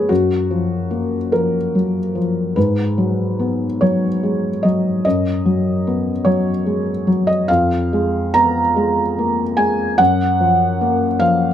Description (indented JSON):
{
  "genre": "neoclassical minimalist piano",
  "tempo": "49 BPM (dotted quarters)",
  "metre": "6/8",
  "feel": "rubato",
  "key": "unclear",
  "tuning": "A4 = 440 Hz",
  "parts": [
    { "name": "felt-muted upright piano", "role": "solo", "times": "0.0-11.5 s", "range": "F2 to Bb5", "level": "-15 LUFS", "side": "equal", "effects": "none" }
  ],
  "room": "light reverb",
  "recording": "none",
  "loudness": "-15 LUFS",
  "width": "side -10 dB against mid",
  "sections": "0.0-11.5 A section",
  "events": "none",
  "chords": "0.1 Gbmaj7; 2.6 Abm7; 5.0 Badd9/F#; 7.5 Fdim; 10.0 Gbmaj7",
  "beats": "| 0.10 1.33 | 2.56 3.81 | 5.05 6.26 | 7.48 8.76 | 9.99 11.21"
}